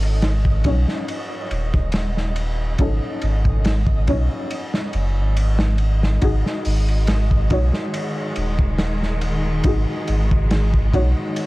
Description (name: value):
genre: trip hop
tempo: 70 BPM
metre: 4/4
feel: swing 54% on 16ths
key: unclear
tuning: A4 = 440 Hz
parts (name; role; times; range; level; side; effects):
- felt-muted upright piano; accompaniment; 0.0-11.5 s; C#4 to C#5; -28 LUFS; left 2 dB; tremolo, low-pass filter, tape echo
- warm sub bass; bass; 0.0-11.1 s; D#1 to B1; -19 LUFS; equal; none
- crunchy breakbeat drum kit; drums; 0.0-11.5 s; hi-hat, kick drum, ride cymbal, snare drum; -23 LUFS; equal; none
- flickering grainy texture; texture; 0.0-11.5 s; D#5; -34 LUFS; right 3 dB; built-in reverb
- rich studio string section; sustained chords; 6.2-11.5 s; D#3 to G#3; -28 LUFS; left 1 dB; none
room: studio reverb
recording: dark, warm production, vinyl crackle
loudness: -18 LUFS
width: side -20 dB against mid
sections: 0.0-11.5 A section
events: none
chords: 0.0 B7 (rootless); 6.2 B69 (rootless)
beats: 0.22 1.08 1.94 | 2.79 3.65 4.51 5.37 | 6.22 7.08 7.94 8.79 | 9.65 10.51 11.37